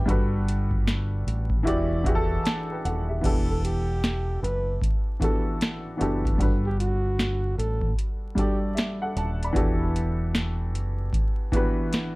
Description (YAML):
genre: lo-fi hip hop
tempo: 76 BPM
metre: 4/4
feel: swing 66% on 16ths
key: E minor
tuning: A4 = 440 Hz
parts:
  - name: warm upright piano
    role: accompaniment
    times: 0.0-12.2 s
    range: E3 to B5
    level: -28 LUFS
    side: equal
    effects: cassette tape
  - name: deep dub fingered electric bass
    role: bass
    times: 0.0-11.1 s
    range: D#1 to A1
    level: -27 LUFS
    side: equal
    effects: none
  - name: booming analog drum machine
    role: drums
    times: 0.1-12.2 s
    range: crash cymbal, hi-hat, kick drum, snare drum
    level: -26 LUFS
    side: equal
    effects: none
  - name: mellow flugelhorn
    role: melody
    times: 3.5-8.6 s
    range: F#4 to B4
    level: -32 LUFS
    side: right 1 dB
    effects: plate reverb
room: light reverb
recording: vinyl crackle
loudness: -23 LUFS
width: side -22 dB against mid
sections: 0.0-3.2 A section; 3.2-12.2 A section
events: none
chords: 0.1 Gmaj9; 1.7 Em9; 3.2 Em11; 6.4 Gmaj9; 9.6 Em11